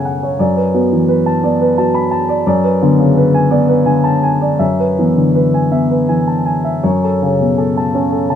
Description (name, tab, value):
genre	neoclassical minimalist piano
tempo	52-59 BPM (dotted quarters)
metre	6/8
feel	rubato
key	unclear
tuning	A4 = 440 Hz
part	dark upright piano	solo	0.0-8.4 s	F#2 to B5	-11 LUFS	equal	none
room	light reverb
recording	minimal, uncompressed stereo recording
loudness	-11 LUFS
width	side -9 dB against mid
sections	0.0-8.4 A section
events	none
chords	0.4 Bm7/F#; 2.5 G#dim/F#; 4.6 E/F#; 6.8 F#m